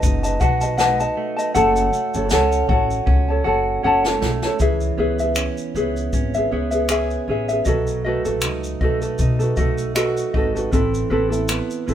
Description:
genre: acoustic pop.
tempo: 78 BPM.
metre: 4/4.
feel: swing 55% on 16ths.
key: unclear.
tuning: A4 = 440 Hz.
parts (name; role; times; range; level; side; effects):
ukulele; accompaniment; 0.0-11.9 s; C4 to A5; -20 LUFS; equal; none.
direct-recorded clean electric guitar; arpeggios; 0.0-11.9 s; E3 to G#4; -28 LUFS; right 7 dB; none.
upright bass; bass; 0.0-11.9 s; F#1 to B2; -24 LUFS; left 1 dB; none.
jazz brush drum kit; drums; 0.0-11.9 s; finger snaps, kick drum, shaker, snare drum; -23 LUFS; equal; none.
room: light reverb.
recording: band playing live in one room.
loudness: -17 LUFS.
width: side -10 dB against mid.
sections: 0.0-4.6 A section; 4.6-11.9 B section.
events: drum fill 3.1-4.6.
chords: 0.0 B7; 1.6 F#m; 4.6 C#m7; 7.7 B7; 10.7 Amadd9.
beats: 0.04 0.80 | 1.56 2.32 3.08 3.85 | 4.61 5.37 6.14 6.90 | 7.67 8.43 9.20 9.96 | 10.73 11.49.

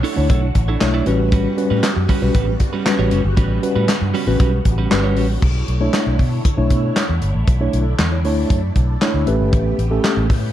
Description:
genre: early-eighties boogie funk.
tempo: 117 BPM.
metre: 4/4.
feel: straight.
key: B minor.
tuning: A4 = 440 Hz.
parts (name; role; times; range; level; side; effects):
phased string machine; sustained chords; 0.0-10.5 s; C#3 to C#5; -29 LUFS; equal; ensemble chorus, phaser.
clean electric guitar; riff; 0.0-5.3 s; G3 to D5; -24 LUFS; right 6 dB; wide subtle chorus.
modern studio drum kit; drums; 0.0-10.4 s; crash cymbal, handclaps, hi-hat, kick drum, snare drum; -19 LUFS; equal; none.
mellow tine electric piano; accompaniment; 0.2-10.3 s; G3 to B5; -21 LUFS; left 1 dB; medium stereo tremolo.
vintage muted fingered electric bass; bass; 0.2-10.5 s; F#1 to B2; -19 LUFS; equal; none.
room: light reverb, studio reverb.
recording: dark, warm production.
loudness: -15 LUFS.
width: side -12 dB against mid.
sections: 0.0-5.4 A section; 5.4-10.5 B section.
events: tine electric piano fill 8.8-9.5.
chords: 0.0 Bm11; 1.1 A13; 5.4 Bm11; 9.3 A9.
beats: 0.30 0.81 | 1.32 1.83 2.35 2.86 | 3.37 3.89 4.40 4.91 | 5.42 5.94 6.45 6.96 | 7.48 7.99 8.50 9.02 | 9.53 10.04.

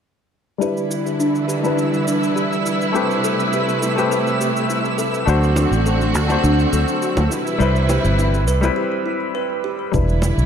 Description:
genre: sunset chillout.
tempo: 103 BPM.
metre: 4/4.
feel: straight.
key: E minor.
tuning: A4 = 440 Hz.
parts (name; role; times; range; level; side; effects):
bright baby grand piano; accompaniment; 0.6-10.5 s; G3 to C5; -23 LUFS; left 3 dB; auto-pan, low-pass filter, ping-pong delay.
warm symphonic string section; sustained chords; 0.6-10.5 s; C3 to B4; -22 LUFS; right 2 dB; none.
kalimba; arpeggios; 0.6-9.7 s; D4 to B4; -24 LUFS; equal; low-pass filter, ping-pong delay.
shaker; drums; 0.6-10.5 s; none; -33 LUFS; right 1 dB; overdrive.
twinkling granular texture; texture; 1.3-8.8 s; E6; -29 LUFS; equal; built-in reverb.
fingered electric bass; bass; 5.3-10.5 s; E1 to D2; -17 LUFS; equal; none.
bongos; percussion; 5.6-10.3 s; none; -27 LUFS; right 1 dB; none.
electronic kick drum; drums; 9.9-10.1 s; none; -22 LUFS; equal; overdrive.
room: moderate lush hall reverb, RT60 2.3 s.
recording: dark, warm production.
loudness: -16 LUFS.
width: side -8 dB against mid.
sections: 0.6-9.9 A section.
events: filter sweep on grand piano 0.6-9.9; filter sweep on kalimba 0.6-9.9; break 8.8-9.9.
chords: 0.6 Em7; 2.9 Am9; 5.3 D7; 7.3 Cmaj7; 9.9 Em7.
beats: | 0.61 1.20 1.78 2.36 | 2.94 3.53 4.11 4.69 | 5.27 5.86 6.44 7.02 | 7.60 8.19 8.77 9.35 | 9.94.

